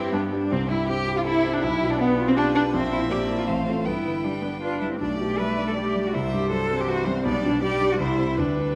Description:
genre	quick classical-period movement for piano quintet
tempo	160 BPM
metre	3/4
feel	straight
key	C major, G major from 5.0 s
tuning	A4 = 440 Hz
part	rich violin	melody	0.0-8.8 s	G4 to E5	-37 LUFS	equal	none
part	rich cello	second line	0.0-8.8 s	G3 to B4	-28 LUFS	equal	none
part	rich violin	second line	0.0-8.8 s	B3 to G5	-32 LUFS	equal	none
part	clear concert grand piano	accompaniment	0.0-8.8 s	A1 to C5	-29 LUFS	equal	none
part	clear viola	accompaniment	0.0-8.8 s	E3 to G4	-33 LUFS	equal	none
room	wet recital hall reverb, RT60 1.6 s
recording	none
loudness	-24 LUFS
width	mono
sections	0.5-8.8 A section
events	none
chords	0.1 G; 0.5 C; 1.6 G7/B; 2.7 C7/Bb; 3.5 F/A; 3.9 G; 5.0 G/B; 6.1 C; 7.2 G/B; 8.0 C

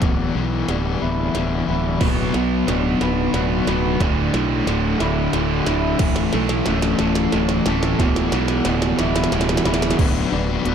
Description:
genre	post-rock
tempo	90 BPM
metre	3/4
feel	straight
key	unclear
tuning	A4 = 440 Hz
part	electric guitar through a small old amp	arpeggios	0.0-10.7 s	D2 to B4	-27 LUFS	left 1 dB	lush chorus, slapback echo
part	raw garage guitar	riff	0.0-10.7 s	D2 to B4	-22 LUFS	left 6 dB	overdrive, tremolo
part	fuzz fingered electric bass	bass	0.0-10.7 s	D1 to B1	-23 LUFS	right 1 dB	overdrive
part	glitchy drum kit	drums	0.0-10.7 s	crash cymbal, hi-hat, kick drum, snare drum	-24 LUFS	right 1 dB	none
part	distorted electric guitar	riff	2.0-10.0 s	D2 to B3	-24 LUFS	right 15 dB	distortion
room	light reverb, digital ambience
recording	dark, warm production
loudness	-17 LUFS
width	side -8 dB against mid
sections	0.0-10.0 A section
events	build-up 0.0-10.0; drum fill 0.0-10.0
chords	0.0 Em/D; 2.0 Bm/D; 4.0 Dsus2; 6.0 A/D; 8.0 Em/D; 10.0 Bm/D

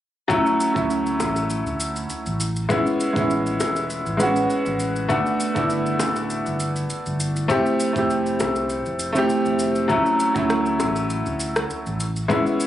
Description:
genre	sunset chillout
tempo	100 BPM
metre	4/4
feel	swing 54% on 16ths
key	D major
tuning	A4 = 440 Hz
part	bright grand piano	accompaniment	0.3-12.7 s	F#3 to G4	-20 LUFS	equal	auto-pan, tape echo
part	round analog bass	bass	0.3-12.4 s	D1 to D2	-29 LUFS	equal	tube saturation
part	electronic kick drum	drums	0.3-12.4 s	none	-30 LUFS	right 1 dB	none
part	electronic shaker and rim click	drums	0.3-12.7 s	none	-31 LUFS	equal	overdrive
part	bongos	percussion	1.2-10.9 s	none	-28 LUFS	left 2 dB	none
room	light reverb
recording	recorded on a phone in the room, club reverb, nothing above 10.6 kHz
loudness	-20 LUFS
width	side -12 dB against mid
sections	0.3-12.7 A section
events	none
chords	0.3 Dmaj9; 2.4 Amaj9; 5.1 Gmaj9; 7.5 Fmaj9; 9.9 Dmaj9; 12.0 Amaj9

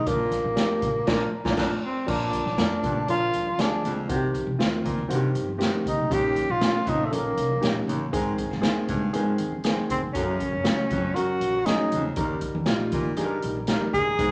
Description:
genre	uptempo 1960s-style soul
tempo	119 BPM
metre	4/4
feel	straight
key	unclear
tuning	A4 = 440 Hz
part	breathy tenor saxophone	melody	0.0-14.3 s	A3 to Ab4	-28 LUFS	equal	none
part	warm upright piano	accompaniment	0.1-14.3 s	Eb3 to Db5	-32 LUFS	equal	none
part	raspy baritone saxophone	riff	0.1-14.3 s	Eb2 to C3	-36 LUFS	equal	none
part	upright bass	bass	0.1-14.3 s	Gb1 to Eb3	-34 LUFS	equal	none
part	swinging big-band drum kit	drums	0.1-14.3 s	crash cymbal, hi-hat, kick drum, snare drum	-31 LUFS	equal	vintage 12-bit sampler grit
part	congas	percussion	0.1-14.1 s	none	-39 LUFS	equal	none
room	moderate large studio reverb, RT60 1.3 s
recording	none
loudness	-25 LUFS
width	mono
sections	0.0-2.1 A section; 2.1-14.3 B section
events	band accent 1.1-2.1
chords	0.1 Bb; 4.1 Cm; 6.1 Eb7/Bb; 8.1 Ab; 10.1 Gb; 12.2 Eb

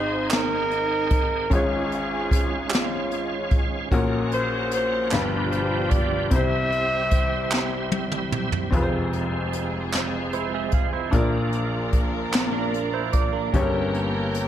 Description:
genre	slow gospel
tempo	50 BPM (dotted quarters)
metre	6/8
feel	straight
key	unclear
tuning	A4 = 436 Hz
part	mellow horn section	melody	0.0-8.3 s	Ab3 to E5	-25 LUFS	equal	none
part	bright grand piano	accompaniment	0.0-14.5 s	F1 to B5	-27 LUFS	left 2 dB	none
part	bright tonewheel organ	sustained chords	0.0-14.5 s	B2 to Ab4	-30 LUFS	right 4 dB	fast rotary speaker, overdrive, chorus vibrato
part	jazz brush drum kit	drums	0.3-14.5 s	hi-hat, kick drum, snare drum, toms	-24 LUFS	equal	none
part	group handclap	percussion	0.3-12.7 s	none	-30 LUFS	right 4 dB	none
part	warm studio string section	sustained chords	8.7-14.5 s	F3 to Bb4	-33 LUFS	equal	none
part	clean electric guitar	second line	10.3-13.7 s	D4 to F5	-30 LUFS	right 10 dB	spring reverb, slapback echo
room	moderate large studio reverb, RT60 1.4 s, studio ambience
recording	none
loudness	-21 LUFS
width	side -11 dB against mid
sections	0.0-8.7 A section; 8.7-14.5 B section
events	drum fill 7.5-8.7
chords	0.0 Ab; 1.5 Db/Ab; 3.9 Gb/Bb; 5.1 G7; 6.3 C; 8.7 Fm; 11.1 Bb; 13.5 Gdim

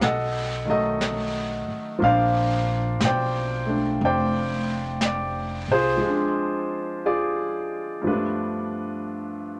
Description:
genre	jazz ballad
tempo	60 BPM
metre	4/4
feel	swing 66% on 8ths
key	Bb major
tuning	A4 = 439 Hz
part	clear grand piano	accompaniment	0.0-9.6 s	G2 to G5	-26 LUFS	equal	none
part	upright bass	bass	0.0-6.0 s	F1 to C2	-30 LUFS	equal	none
part	jazz brush drum kit	drums	0.0-6.5 s	brushed snare drum, hi-hat, snare drum	-34 LUFS	equal	none
room	moderate club reverb, RT60 0.6 s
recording	none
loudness	-25 LUFS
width	mono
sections	0.0-9.6 A section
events	break 6.0-9.6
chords	0.0 B7; 2.0 Bb69; 6.0 Dm7b5; 8.1 G7

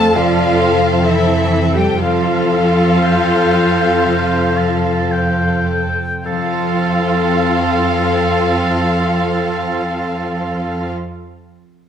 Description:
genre	cinematic, emotional film score for orchestra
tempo	52-68 BPM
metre	4/4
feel	rubato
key	F major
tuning	A4 = 439 Hz
part	warm symphonic violin section	melody	0.0-10.9 s	E5 to A5	-24 LUFS	left 1 dB	none
part	clear clarinet	second line	0.0-10.9 s	C4 to F5	-27 LUFS	left 1 dB	none
part	concert flute	second line	0.0-10.9 s	E5 to A5	-24 LUFS	right 1 dB	none
part	warm symphonic violin section	second line	0.0-10.9 s	C4 to A4	-24 LUFS	left 2 dB	none
part	warm symphonic viola section	accompaniment	0.0-10.9 s	E4 to A4	-20 LUFS	right 2 dB	none
part	mellow French horn section	sustained chords	0.0-10.9 s	C4 to A4	-22 LUFS	left 4 dB	none
part	concert harp	arpeggios	0.0-11.3 s	F2 to A5	-25 LUFS	left 11 dB	none
part	rich symphonic cello section	bass	0.0-10.9 s	E3 to A3	-21 LUFS	right 1 dB	none
part	warm symphonic double bass section	bass	0.0-10.9 s	F2	-22 LUFS	right 3 dB	none
part	clear oboe	second line	3.0-10.9 s	A4 to A5	-22 LUFS	right 2 dB	none
room	moderate scoring stage reverb, RT60 1.5 s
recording	close, detailed microphones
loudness	-13 LUFS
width	side -8 dB against mid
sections	0.0-6.3 A section; 6.3-10.8 B section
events	slowing down 0.0-6.3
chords	0.0 F

